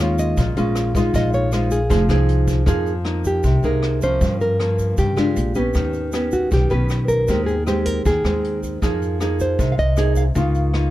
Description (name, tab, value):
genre	bossa nova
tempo	156 BPM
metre	4/4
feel	straight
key	F minor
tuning	A4 = 440 Hz
part	nylon-string guitar	melody	0.0-10.2 s	F4 to F5	-22 LUFS	equal	none
part	nylon-string guitar	accompaniment	0.0-10.9 s	G2 to Ab4	-22 LUFS	equal	none
part	upright bass	bass	0.0-10.9 s	F1 to Db3	-20 LUFS	equal	none
part	jazz brush drum kit	drums	0.2-10.8 s	hi-hat, kick drum, rim click	-26 LUFS	equal	none
part	egg shaker	percussion	0.2-10.7 s	none	-42 LUFS	right 5 dB	none
room	little or no reverb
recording	dark, warm production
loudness	-17 LUFS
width	side -15 dB against mid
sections	0.0-2.7 A section; 2.7-10.9 B section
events	nylon-string guitar solo 0.0-2.7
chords	0.0 Eb9sus4; 1.1 Bb7sus4; 1.9 Fm7; 2.7 Fm11; 4.2 Gm7b5; 5.4 Bb6; 5.7 Ebaug7; 7.3 Abmaj7/Eb; 8.8 Fm7; 10.4 Db69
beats	0.36 0.75 | 1.13 1.52 1.90 2.29 | 2.67 3.05 3.44 3.82 | 4.21 4.59 4.98 5.36 | 5.74 6.13 6.51 6.90 | 7.28 7.67 8.05 8.44 | 8.82 9.20 9.59 9.97 | 10.36 10.74